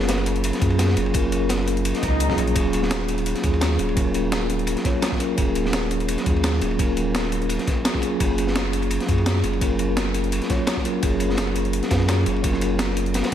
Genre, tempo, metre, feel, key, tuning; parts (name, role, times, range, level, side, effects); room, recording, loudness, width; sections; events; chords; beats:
liquid drum and bass; 170 BPM; 4/4; swing 53% on 16ths; F# major; A4 = 440 Hz
mellow tine electric piano; accompaniment; 0.0-13.3 s; F#3 to C#5; -23 LUFS; equal; medium stereo tremolo, vintage 12-bit sampler grit, ping-pong delay
warm sub bass; bass; 0.0-13.3 s; D#1 to F#2; -24 LUFS; equal
crunchy breakbeat drum kit; drums; 0.0-13.3 s; ride cymbal, snare drum; -29 LUFS; equal; high-pass filter on cymbals, small room ambience, high-pass filter on snare, high-pass filter on room
breakbeat sampler-style drum kit; drums; 0.1-13.3 s; hi-hat, snare drum; -29 LUFS; equal; small room ambience
electronic kick drum; drums; 0.6-13.3 s; -25 LUFS; equal; small room ambience
swell; sound effects; 1.9-2.6 s; -28 LUFS; equal
moderate plate reverb, RT60 1.6 s, studio reverb; dreamy mix soaked in reverb; -19 LUFS; side -10 dB against mid
0.0-13.3 A section
swell 1.9-2.6
0.0 F#maj9; 2.6 D#m11; 8.2 F#maj9
0.09 0.44 0.79 | 1.15 1.50 1.85 2.20 | 2.56 2.91 3.26 3.62 | 3.97 4.32 4.67 5.03 | 5.38 5.73 6.09 6.44 | 6.79 7.14 7.50 7.85 | 8.20 8.56 8.91 9.26 | 9.62 9.97 10.32 10.68 | 11.03 11.38 11.73 12.09 | 12.44 12.79 13.14